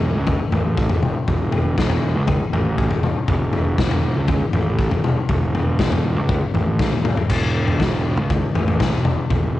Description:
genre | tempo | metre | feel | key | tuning
psychedelic rock | 120 BPM | 4/4 | straight | unclear | A4 = 440 Hz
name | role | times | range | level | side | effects
fuzz picked electric bass | bass | 0.0-9.6 s | E1 to C#2 | -21 LUFS | right 2 dB | overdrive
raw garage drum kit | drums | 0.3-9.4 s | crash cymbal, kick drum, snare drum, toms | -19 LUFS | left 2 dB | none
room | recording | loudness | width
light reverb | 1960s-style stereo | -17 LUFS | side -15 dB against mid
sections
0.0-7.3 A section; 7.3-9.6 B section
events
drum fill 6.8-7.3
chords
none

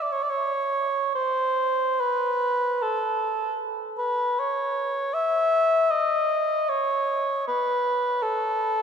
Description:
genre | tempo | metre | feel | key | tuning
classical, free, expressive piece for unaccompanied cor anglais | 70-80 BPM | 4/4 | rubato | unclear | A4 = 437 Hz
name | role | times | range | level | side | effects
mellow cor anglais | solo | 0.0-8.8 s | A4 to E5 | -22 LUFS | equal | none
room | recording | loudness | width
wet cathedral reverb, RT60 5.0 s | in a vast, echoing space | -22 LUFS | side -7 dB against mid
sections
0.0-8.8 A section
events
none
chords
none

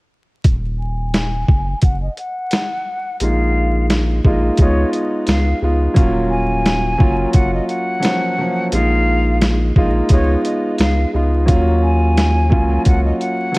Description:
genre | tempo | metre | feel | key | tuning
hip hop, boom-bap hip-hop | 87 BPM | 4/4 | swing 54% on 16ths | Eb minor | A4 = 437 Hz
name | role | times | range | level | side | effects
saturated sub bass | bass | 0.4-13.1 s | Eb1 to Eb2 | -18 LUFS | equal | tube saturation
boom bap sampler-style drum kit | drums | 0.4-13.6 s | hi-hat, kick drum, snare drum | -15 LUFS | equal | none
breathy hollow silver concert flute | melody | 0.8-13.6 s | Db5 to Ab5 | -23 LUFS | left 1 dB | high-pass filter, low-pass filter, ping-pong delay
warm grand piano | accompaniment | 3.2-13.6 s | F3 to F4 | -18 LUFS | equal | cassette tape, high-pass filter, low-pass filter
room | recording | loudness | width
small room ambience | worn, warbling old tape, cassette tape, vinyl crackle, warbly pitch drift | -14 LUFS | side -23 dB against mid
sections
0.5-6.0 A section; 6.0-13.6 B section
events
filter sweep 0.5-6.0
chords
0.5 Ebm; 3.2 Bb7sus4; 4.6 Db7; 6.0 Ebm7; 8.7 Bb7sus4; 10.1 Db7; 11.5 Ebm7

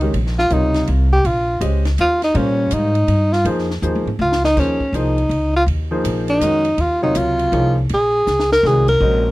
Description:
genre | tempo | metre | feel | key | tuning
modal jazz | 162 BPM | 3/4 | swing 64% on 8ths | Bb dorian, Eb dorian from 4.6 s | A4 = 439 Hz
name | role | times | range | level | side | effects
dark tenor saxophone | melody | 0.0-9.3 s | Db4 to Bb4 | -16 LUFS | equal | none
warm concert grand piano | accompaniment | 0.0-9.2 s | C3 to Eb5 | -22 LUFS | equal | none
upright bass | bass | 0.0-9.3 s | Bb1 to Bb2 | -19 LUFS | equal | none
compact cocktail drum kit | drums | 0.0-8.9 s | crash cymbal, hi-hat, kick drum, ride cymbal, snare drum, toms | -30 LUFS | left 1 dB | none
room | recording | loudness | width
little or no reverb | dry, close 1970s-style studio recording | -14 LUFS | side -18 dB against mid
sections
0.0-4.6 A section; 4.6-9.3 A section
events
tenor saxophone solo 0.0-9.3; drum fill 3.8-4.6, 8.3-8.6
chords
0.0 Bbm11; 4.6 Eb9sus4

